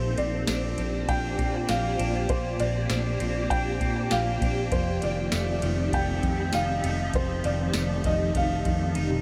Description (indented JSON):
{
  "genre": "dream pop",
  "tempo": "99 BPM",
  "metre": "4/4",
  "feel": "straight",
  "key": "Bb major",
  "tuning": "A4 = 439 Hz",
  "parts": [
    { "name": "felt-muted upright piano", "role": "melody", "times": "0.0-8.9 s", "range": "C5 to G5", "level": "-33 LUFS", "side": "equal", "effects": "delay" },
    { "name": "granular cloud pad", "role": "sustained chords", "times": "0.0-9.2 s", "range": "F3 to D5", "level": "-34 LUFS", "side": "equal", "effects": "built-in reverb, ensemble chorus" },
    { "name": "clean electric guitar", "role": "arpeggios", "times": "0.0-9.2 s", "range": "F2 to G4", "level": "-34 LUFS", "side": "equal", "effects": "lush chorus, delay" },
    { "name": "vintage muted fingered electric bass", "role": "bass", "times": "0.0-9.2 s", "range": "F1 to Bb2", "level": "-32 LUFS", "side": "equal", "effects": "none" },
    { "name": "soft vintage rhythm box", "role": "drums", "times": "0.2-9.2 s", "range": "kick drum, ride cymbal, snare drum, tambourine, toms", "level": "-34 LUFS", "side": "equal", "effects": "none" }
  ],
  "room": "wet huge ambient reverb, RT60 8.0 s",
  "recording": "dreamy mix soaked in reverb",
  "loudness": "-26 LUFS",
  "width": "mono",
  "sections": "0.0-9.2 A section",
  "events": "drum fill 9.0",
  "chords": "0.0 Bb69; 4.7 F7"
}